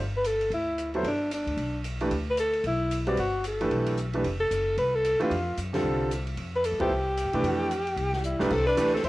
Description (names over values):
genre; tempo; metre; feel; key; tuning
modal jazz; 225 BPM; 4/4; swing 60% on 8ths; unclear; A4 = 441 Hz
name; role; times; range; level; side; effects
upright bass; bass; 0.0-9.1 s; F1 to C3; -32 LUFS; left 1 dB; none
breathy alto saxophone; melody; 0.2-9.1 s; D4 to C5; -27 LUFS; equal; cassette tape
open jazz drum kit; drums; 0.2-9.1 s; crash cymbal, hi-hat, kick drum, ride cymbal, snare drum; -39 LUFS; right 1 dB; none
clear grand piano; accompaniment; 0.9-8.9 s; C2 to D5; -28 LUFS; right 1 dB; cassette tape
breathy tenor saxophone; second line; 8.2-9.1 s; G3 to E4; -33 LUFS; left 2 dB; cassette tape
room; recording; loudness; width
moderate studio reverb, RT60 0.6 s; home recording on cassette; -25 LUFS; side -18 dB against mid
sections
0.0-8.5 A section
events
band accent 6.8; drum fill 8.2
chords
0.0 Gadd9; 4.2 Fmaj9; 8.5 Cmaj9